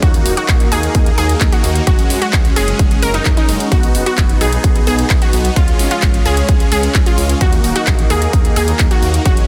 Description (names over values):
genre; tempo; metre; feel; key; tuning
EDM, festival progressive house; 130 BPM; 4/4; straight; unclear; A4 = 442 Hz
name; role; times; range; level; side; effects
lush unison pad; sustained chords; 0.0-9.5 s; C#3 to A#4; -29 LUFS; equal; chorus, sidechain pumping
unison pluck; arpeggios; 0.0-9.5 s; D#4 to A#4; -23 LUFS; equal; sidechain pumping, digital delay
supersaw chords; riff; 0.0-9.5 s; G#3 to A#4; -22 LUFS; equal; sidechain pumping, digital delay
detuned saw bass; bass; 0.0-9.4 s; D#1 to F#2; -21 LUFS; equal; chorus, sidechain pumping
big-room dance drum kit; drums; 0.0-9.5 s; handclaps, hi-hat; -24 LUFS; equal; none
electronic kick drum; drums; 0.0-9.3 s; none; -15 LUFS; equal; none
room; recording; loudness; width
light reverb; dense, heavily limited modern master; -14 LUFS; mono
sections
0.0-9.5 A section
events
none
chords
0.0 D#m; 1.9 F#sus2; 3.7 B; 5.6 C#; 7.4 D#m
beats
| 0.03 0.49 0.95 1.41 | 1.87 2.33 2.79 3.26 | 3.72 4.18 4.64 5.10 | 5.56 6.03 6.49 6.95 | 7.41 7.87 8.33 8.79 | 9.26